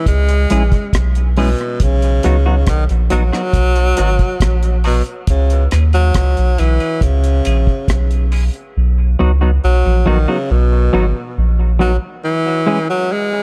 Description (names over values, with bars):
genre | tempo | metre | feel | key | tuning
dub reggae | 69 BPM | 4/4 | straight | C# dorian | A4 = 435 Hz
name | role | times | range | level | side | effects
bright tenor saxophone | melody | 0.0-13.4 s | B2 to G#3 | -22 LUFS | equal | dub echo
soft dub sub bass | bass | 0.1-12.0 s | G#1 to D#2 | -16 LUFS | equal | none
deep reggae drum kit | drums | 0.1-8.7 s | hi-hat, kick drum, rim click | -20 LUFS | equal | none
semi-hollow electric guitar | accompaniment | 0.5-12.8 s | F#3 to G#4 | -24 LUFS | equal | high-pass filter, dub echo
room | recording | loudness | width
studio reverb | dark, warm production, faint mains hum | -15 LUFS | mono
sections
0.0-13.4 A section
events
filter sweep on clean electric guitar 1.8-8.8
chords
0.0 C#m; 1.8 B; 5.3 C#m; 8.8 B; 12.2 C#m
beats
0.07 0.93 | 1.80 2.67 3.54 4.41 | 5.28 6.15 7.01 7.88 | 8.75 9.62 10.49 11.36 | 12.23 13.10